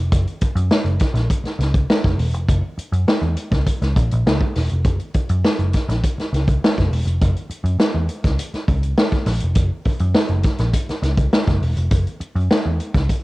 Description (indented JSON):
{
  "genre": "funk",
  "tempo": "102 BPM",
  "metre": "4/4",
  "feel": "straight",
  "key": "F# mixolydian",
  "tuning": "A4 = 435 Hz",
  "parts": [
    { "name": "vintage muted picked electric bass", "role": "bass", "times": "0.0-13.1 s", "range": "E1 to F#2", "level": "-19 LUFS", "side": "equal", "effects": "none" },
    { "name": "swinging big-band drum kit", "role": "drums", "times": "0.1-13.2 s", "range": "hi-hat, kick drum, snare drum", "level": "-18 LUFS", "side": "equal", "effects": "cassette tape" }
  ],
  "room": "little or no reverb",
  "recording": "home recording on cassette",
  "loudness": "-17 LUFS",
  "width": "side -20 dB against mid",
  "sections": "0.0-13.2 A section",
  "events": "none",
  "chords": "none",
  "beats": "| 0.12 0.71 1.31 1.90 | 2.49 3.08 3.67 4.26 | 4.85 5.44 6.03 6.62 | 7.21 7.80 8.39 8.98 | 9.57 10.15 10.74 11.33 | 11.92 12.51 13.10"
}